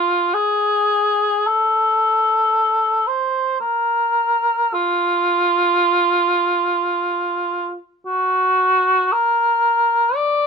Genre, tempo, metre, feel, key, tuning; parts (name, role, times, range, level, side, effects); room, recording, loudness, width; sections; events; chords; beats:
classical, free, expressive piece for unaccompanied cor anglais; free time; A4 = 441 Hz
mellow cor anglais; solo; 0.0-10.5 s; F4 to D5; -16 LUFS; equal
light reverb; close, detailed microphones; -16 LUFS; side -5 dB against mid
0.0-10.5 A section
free time